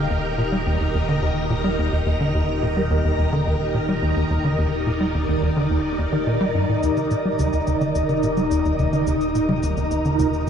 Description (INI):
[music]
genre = ambient, sequencer-driven space music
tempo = 107 BPM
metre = 4/4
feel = straight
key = Eb major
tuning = A4 = 439 Hz
[part]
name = phased string machine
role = sustained chords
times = 0.0-10.5 s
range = Eb3 to Bb5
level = -22 LUFS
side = equal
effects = ensemble chorus, phaser
[part]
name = tight sequencer bass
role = riff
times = 0.0-10.5 s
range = Eb2 to G3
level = -22 LUFS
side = equal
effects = wide subtle chorus, tape echo
[part]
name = fat analog bass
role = bass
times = 0.0-10.5 s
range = Eb1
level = -29 LUFS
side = equal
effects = tube saturation
[part]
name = electronic cabasa and toms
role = percussion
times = 6.8-10.5 s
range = none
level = -29 LUFS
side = left 2 dB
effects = tape echo
[sound]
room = moderate shimmer reverb, RT60 7.3 s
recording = dark, warm production, nothing above 10.4 kHz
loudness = -19 LUFS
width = side -8 dB against mid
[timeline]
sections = 0.0-10.5 A section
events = none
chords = 0.0 Eb